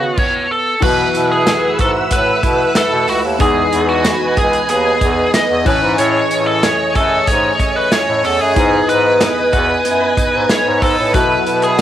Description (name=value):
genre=1980s-style pop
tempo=93 BPM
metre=4/4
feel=straight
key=E major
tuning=A4 = 440 Hz
part: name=biting lead guitar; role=melody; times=0.0-11.8 s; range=F#4 to D#5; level=-16 LUFS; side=equal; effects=overdrive, cassette tape
part: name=clear baby grand piano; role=accompaniment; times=0.0-11.8 s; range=D#3 to G#5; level=-23 LUFS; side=left 8 dB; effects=cassette tape
part: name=string machine, violins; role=sustained chords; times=0.0-11.8 s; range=B4 to E6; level=-19 LUFS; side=equal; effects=ensemble chorus, cassette tape
part: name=direct-recorded clean electric guitar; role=riff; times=0.0-11.8 s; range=D#3 to A4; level=-23 LUFS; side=right 8 dB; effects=wide subtle chorus, cassette tape, tape echo
part: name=clear bass clarinet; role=bass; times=0.0-11.8 s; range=C#2 to B2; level=-18 LUFS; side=equal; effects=none
part: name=modern studio drum kit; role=drums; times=0.2-11.8 s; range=crash cymbal, hi-hat, kick drum, snare drum, tambourine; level=-19 LUFS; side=equal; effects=cassette tape
part: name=tambourine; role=percussion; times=0.8-11.8 s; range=none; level=-34 LUFS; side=left 10 dB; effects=none
room=wet studio reverb, RT60 0.5 s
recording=home recording on cassette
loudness=-12 LUFS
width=side -11 dB against mid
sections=0.8-11.8 A section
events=none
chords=0.0 Badd9; 0.8 B7sus4; 3.4 Emaj7; 5.7 Amaj7; 8.6 Emaj7; 11.1 B7sus4